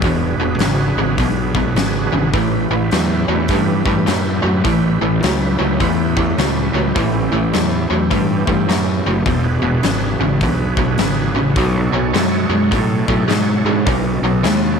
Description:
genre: blues rock power trio and southern rock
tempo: 104 BPM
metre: 4/4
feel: swing 63% on 8ths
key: unclear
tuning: A4 = 442 Hz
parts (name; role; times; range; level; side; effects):
- overdriven tonewheel organ; sustained chords; 0.0-14.8 s; B3 to C#5; -24 LUFS; right 8 dB; slow rotary speaker, chorus vibrato
- overdriven electric guitar; riff; 0.0-14.8 s; E2 to G#3; -17 LUFS; equal; none
- fuzz fingered electric bass; bass; 0.0-14.8 s; E1 to A2; -20 LUFS; equal; overdrive
- huge arena drum kit; drums; 0.0-14.6 s; hi-hat, kick drum, snare drum; -22 LUFS; left 4 dB; none
room: light reverb, small room ambience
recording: 1960s-style stereo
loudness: -14 LUFS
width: side -6 dB against mid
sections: 0.0-14.8 A section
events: none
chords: 0.0 E7; 2.3 A7; 9.3 E7; 11.6 B7

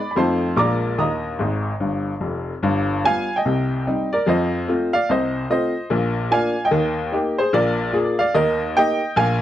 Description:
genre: jazz, stride piano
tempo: 147 BPM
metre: 4/4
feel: swing 60% on 8ths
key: Eb major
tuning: A4 = 439 Hz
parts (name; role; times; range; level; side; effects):
- clear upright piano; solo; 0.0-9.4 s; F1 to Eb6; -18 LUFS; equal; none
room: wet studio ambience, RT60 0.5 s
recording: cassette tape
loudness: -18 LUFS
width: side -12 dB against mid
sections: 0.0-2.6 A section; 2.6-9.4 B section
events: upright piano fill 1.4-2.6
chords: 0.2 F7; 0.6 Bb7; 1.0 Eb; 2.6 G7; 3.4 Cm; 4.3 F7; 5.9 Bb; 6.7 Eb; 7.5 Bb7; 8.3 Eb

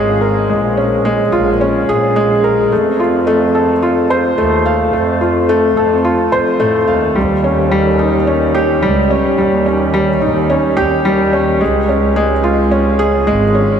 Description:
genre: piano and strings electronica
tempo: 108 BPM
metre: 4/4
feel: straight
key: Bb dorian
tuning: A4 = 438 Hz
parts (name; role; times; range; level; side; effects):
- felt-muted upright piano; riff; 0.0-13.8 s; G3 to F5; -12 LUFS; equal; diffuse ambient delay
- clear chamber double bass section; bass; 0.0-13.8 s; Ab1 to A2; -17 LUFS; right 1 dB; none
room: wet huge ambient reverb, RT60 8.6 s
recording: dreamy mix soaked in reverb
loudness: -11 LUFS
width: side -8 dB against mid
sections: 0.0-13.8 A section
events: none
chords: 0.0 Bbm7; 2.7 F; 7.2 Eb7; 11.6 Db

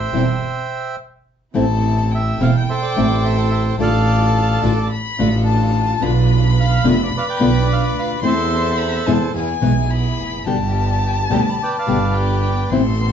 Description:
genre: tango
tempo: 107 BPM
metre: 4/4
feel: rubato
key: A minor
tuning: A4 = 439 Hz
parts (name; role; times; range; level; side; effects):
- bandoneon; melody; 0.0-12.7 s; A4 to B5; -22 LUFS; right 3 dB; none
- warm violin; second line; 0.0-13.1 s; G5 to C6; -24 LUFS; left 5 dB; none
- clear studio string section; stabs; 0.0-13.1 s; B3 to B4; -27 LUFS; equal; none
- clear double bass; bass; 0.0-13.1 s; E1 to E2; -18 LUFS; right 1 dB; none
- nylon-string guitar; accompaniment; 0.1-12.8 s; B2 to G4; -19 LUFS; left 3 dB; none
room: wet club reverb, RT60 0.6 s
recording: heard from further back in the room, nothing above 7.8 kHz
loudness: -15 LUFS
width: side -8 dB against mid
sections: 0.0-1.5 A section; 1.5-13.1 A section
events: stop 0.4-1.5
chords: 0.0 Am7; 1.5 Am; 3.8 Dm/A; 6.0 Bdim; 8.2 Am/E; 9.3 E; 10.5 G

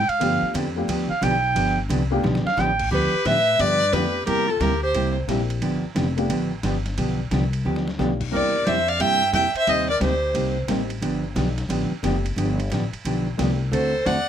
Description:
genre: country, western swing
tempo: 178 BPM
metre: 4/4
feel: swing 64% on 8ths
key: G mixolydian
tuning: A4 = 441 Hz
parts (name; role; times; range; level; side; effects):
- breathy clarinet; second line; 0.0-5.1, 8.3-10.5, 13.7-14.3 s; F4 to G5; -25 LUFS; right 3 dB; none
- upright bass; bass; 0.0-14.3 s; F1 to A2; -26 LUFS; left 1 dB; none
- lo-fi sampler-style drum kit; drums; 0.1-14.2 s; crash cymbal, hi-hat, kick drum, ride cymbal, snare drum; -33 LUFS; equal; overdrive
- dark upright piano; accompaniment; 0.2-13.6 s; G3 to G4; -28 LUFS; left 3 dB; none
- hollow-body jazz guitar; accompaniment; 0.2-14.2 s; C3 to A4; -25 LUFS; right 2 dB; none
- dark fiddle; melody; 2.9-5.1, 8.3-10.5, 13.7-14.3 s; A4 to G5; -21 LUFS; equal; plate reverb
room: moderate booth ambience, RT60 0.1 s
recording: none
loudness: -20 LUFS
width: side -9 dB against mid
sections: 0.0-2.9 A section; 2.9-14.3 B section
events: clarinet solo 0.0-2.9; drum fill 2.2-2.6, 7.6-8.0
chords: 0.2 G9; 4.3 C9; 5.6 G9; 8.3 C9; 9.7 Cm7; 11.0 G9; 13.7 D9

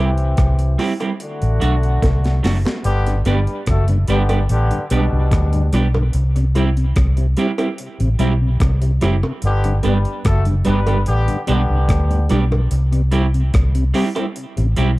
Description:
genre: roots reggae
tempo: 73 BPM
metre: 4/4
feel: straight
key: G major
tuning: A4 = 441 Hz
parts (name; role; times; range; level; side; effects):
- warm horn section; second line; 0.0-12.3 s; B2 to B4; -24 LUFS; left 2 dB; tape echo
- clean electric guitar; accompaniment; 0.0-14.9 s; F#3 to G4; -23 LUFS; right 4 dB; tape echo
- vintage muted fingered electric bass; bass; 0.0-15.0 s; F#1 to D2; -16 LUFS; equal; none
- breakbeat sampler-style drum kit; drums; 0.2-15.0 s; hi-hat, kick drum, rim click, snare drum; -22 LUFS; equal; overdrive, tape echo
- bongos; percussion; 0.8-14.3 s; none; -27 LUFS; right 2 dB; none
- mellow tonewheel organ; accompaniment; 3.1-14.9 s; G2 to E4; -25 LUFS; left 2 dB; chorus vibrato, slow rotary speaker, tape echo
room: digital ambience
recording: dark, warm production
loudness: -15 LUFS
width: side -19 dB against mid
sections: 0.0-2.9 A section; 2.9-15.0 B section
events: drum fill 2.0-2.9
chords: 0.0 C; 1.2 D; 2.9 G; 6.1 C; 9.4 G; 12.7 C

